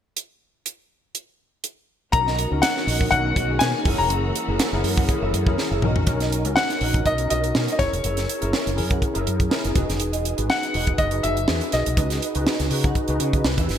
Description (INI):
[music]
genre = polished 1980s jazz-funk pop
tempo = 122 BPM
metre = 4/4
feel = swing 54% on 16ths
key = B major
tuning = A4 = 438 Hz
[part]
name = tight funk drum kit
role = drums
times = 0.2-13.8 s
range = hi-hat, kick drum, snare drum, toms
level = -24 LUFS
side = right 1 dB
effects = gated reverb
[part]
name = clear baby grand piano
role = melody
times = 2.1-13.2 s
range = C#5 to A#5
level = -24 LUFS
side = left 3 dB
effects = none
[part]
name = tine electric piano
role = accompaniment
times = 2.1-13.8 s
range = C#4 to B4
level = -27 LUFS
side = left 2 dB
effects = ensemble chorus
[part]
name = warm studio string section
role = sustained chords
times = 2.1-6.1 s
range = D#3 to F#4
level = -33 LUFS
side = equal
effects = none
[part]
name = electric guitar at the edge of break-up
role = riff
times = 2.1-13.8 s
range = F#4 to F#5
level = -33 LUFS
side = right 5 dB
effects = ensemble chorus
[part]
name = mellow fretless electric bass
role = bass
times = 2.1-13.8 s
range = E1 to C#3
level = -25 LUFS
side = equal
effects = ensemble chorus
[sound]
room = light reverb, small room ambience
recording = bright 1980s-style digital production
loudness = -19 LUFS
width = side -9 dB against mid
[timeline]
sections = 0.2-2.1 A section; 2.1-6.1 B section; 6.1-13.8 C section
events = drum fill 5.6-6.1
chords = 0.2 N.C.; 2.1 Bmaj7; 3.9 F#9; 5.8 Bmaj7; 7.8 F#9; 9.8 Emaj9; 12.0 C#9sus4